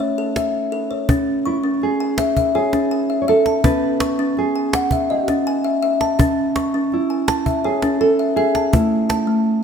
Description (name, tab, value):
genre	world meditative, meditative tuned percussion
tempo	165 BPM (eighths)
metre	7/8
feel	straight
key	C# minor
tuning	A4 = 442 Hz
part	nylon-string guitar	melody	0.0-9.6 s	E4 to C#5	-22 LUFS	right 3 dB	diffuse ambient delay
part	kalimba	arpeggios	0.0-9.6 s	A3 to C#6	-18 LUFS	left 1 dB	none
part	cajon	percussion	0.4-9.3 s	none	-21 LUFS	right 1 dB	none
room	wet echo chamber reverb, RT60 2.0 s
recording	none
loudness	-16 LUFS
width	side -7 dB against mid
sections	0.0-1.1 A section; 1.1-9.6 B section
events	none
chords	0.0 C#m; 3.6 B; 6.2 C#m; 8.7 A5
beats	0.00 0.36 0.73 | 1.09 1.46 1.82 2.19 2.55 2.91 3.28 | 3.64 4.00 4.37 4.73 5.09 5.46 5.82 | 6.19 6.55 6.91 7.28 7.64 8.00 8.36 | 8.73 9.09 9.45